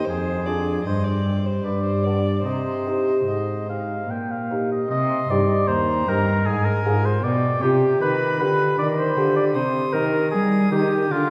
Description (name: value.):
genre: classical, baroque-style sonata movement with continuo.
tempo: 77 BPM.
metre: 3/4.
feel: straight.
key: C minor.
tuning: A4 = 443 Hz.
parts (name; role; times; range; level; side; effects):
rich violin; melody; 0.0-11.3 s; B4 to Eb6; -35 LUFS; equal; none.
warm oboe; second line; 0.0-11.3 s; F4 to G5; -27 LUFS; equal; none.
lute; accompaniment; 0.0-11.3 s; Eb2 to Ab4; -27 LUFS; equal; none.
rich cello; bass; 0.0-11.3 s; Eb2 to G3; -26 LUFS; equal; none.
room: wet scoring stage reverb, RT60 2.0 s.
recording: heard from further back in the room.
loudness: -22 LUFS.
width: mono.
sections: 0.0-4.9 A section; 4.9-11.3 B section.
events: none.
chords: 0.1 Ddim/F; 0.8 C5/G; 1.6 G; 2.4 Cm; 6.5 Fm/Ab; 7.2 G7/B; 9.5 Cm.